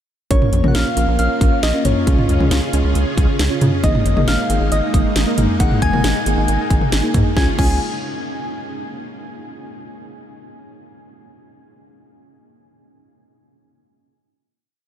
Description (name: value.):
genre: synth-pop.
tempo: 136 BPM.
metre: 4/4.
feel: straight.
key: Db major.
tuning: A4 = 440 Hz.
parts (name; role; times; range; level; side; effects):
soft struck synth lead; melody; 0.3-7.8 s; Db5 to Ab5; -24 LUFS; left 1 dB; chorus, ping-pong delay.
soft electric-piano-like synth keys; accompaniment; 0.3-7.8 s; Bb3 to Bb4; -25 LUFS; right 2 dB; chorus.
string machine, violas; sustained chords; 0.3-7.6 s; Db3 to Ab4; -24 LUFS; equal; phaser, ensemble chorus.
rubbery square bass; bass; 0.3-7.8 s; Ab1 to Db3; -18 LUFS; equal; none.
house drum kit; drums; 0.3-7.7 s; crash cymbal, hi-hat, kick drum, snare drum, toms; -19 LUFS; equal; none.
room: moderate huge ambient reverb, RT60 8.0 s.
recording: dreamy mix soaked in reverb.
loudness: -14 LUFS.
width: side -10 dB against mid.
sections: 0.3-7.4 pre-chorus; 7.4-9.1 final chord.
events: none.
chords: 0.3 Bbm; 2.1 Db; 3.8 Absus2; 7.4 Db.